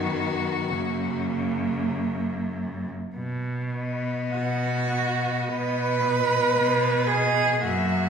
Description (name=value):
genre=classical, lyrical piece for cello ensemble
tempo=48-58 BPM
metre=4/4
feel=rubato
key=B major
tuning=A4 = 440 Hz
part: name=rich cello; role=melody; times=0.0-8.1 s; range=F#4 to E5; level=-31 LUFS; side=left 5 dB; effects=none
part: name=rich cello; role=second line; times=0.0-8.1 s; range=A#3 to B4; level=-25 LUFS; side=right 4 dB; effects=none
part: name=warm cello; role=accompaniment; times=0.0-8.1 s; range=C#3 to B3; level=-33 LUFS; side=left 4 dB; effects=none
part: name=clear cello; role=bass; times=0.0-8.1 s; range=F#2 to B2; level=-28 LUFS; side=equal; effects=none
room=wet recital hall reverb, RT60 1.5 s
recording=recorded in a church or concert hall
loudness=-23 LUFS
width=side -7 dB against mid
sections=0.0-3.1 A section; 3.1-8.1 B section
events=none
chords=0.0 B/F#; 0.7 F#; 3.1 B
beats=0.70 1.92 | 3.14 4.31 5.49 6.56 | 7.62